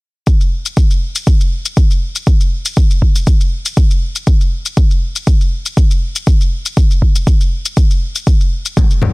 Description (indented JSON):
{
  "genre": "afro house",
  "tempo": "120 BPM",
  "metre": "4/4",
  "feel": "swing 54% on 16ths",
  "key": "none",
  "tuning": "none",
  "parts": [
    { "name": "electronic kick drum", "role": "drums", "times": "0.3-8.9 s", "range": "none", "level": "-11 LUFS", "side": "equal", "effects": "none" },
    { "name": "shaker", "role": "drums", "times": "0.3-9.0 s", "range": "none", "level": "-23 LUFS", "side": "left 3 dB", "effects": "none" },
    { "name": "congas", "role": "percussion", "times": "8.8-9.1 s", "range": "none", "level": "-15 LUFS", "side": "left 3 dB", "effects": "none" }
  ],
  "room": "studio reverb",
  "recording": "dense, heavily limited modern master",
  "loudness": "-11 LUFS",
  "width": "side -26 dB against mid",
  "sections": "0.3-9.1 A section",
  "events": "none",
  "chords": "none",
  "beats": "| 0.27 0.77 1.27 1.77 | 2.27 2.77 3.27 3.77 | 4.27 4.77 5.27 5.77 | 6.27 6.77 7.27 7.77 | 8.27 8.77"
}